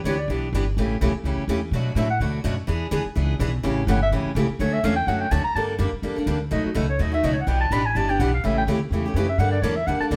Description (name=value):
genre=acoustic string swing (jazz manouche)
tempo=250 BPM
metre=4/4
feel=swing 56% on 8ths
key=unclear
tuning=A4 = 440 Hz
part: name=upright bass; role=bass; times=0.0-10.2 s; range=G1 to B2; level=-27 LUFS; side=equal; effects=none
part: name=mellow clarinet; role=second line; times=0.1-10.1 s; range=F#4 to B5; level=-28 LUFS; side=equal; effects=none
part: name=picked steel-string acoustic guitar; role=accompaniment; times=0.1-10.2 s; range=B2 to A4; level=-27 LUFS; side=equal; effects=none
room=wet studio reverb, RT60 0.7 s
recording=heard from further back in the room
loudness=-23 LUFS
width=mono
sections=0.0-5.6 A section; 5.6-10.2 A section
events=clarinet solo 0.0-10.2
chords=0.0 Em7; 0.8 A9; 1.7 Bm7; 2.7 E7; 3.6 A7; 4.6 Dmaj7; 5.6 Gmadd9; 6.5 B7; 7.5 Em7; 8.4 A7; 9.4 Gmadd9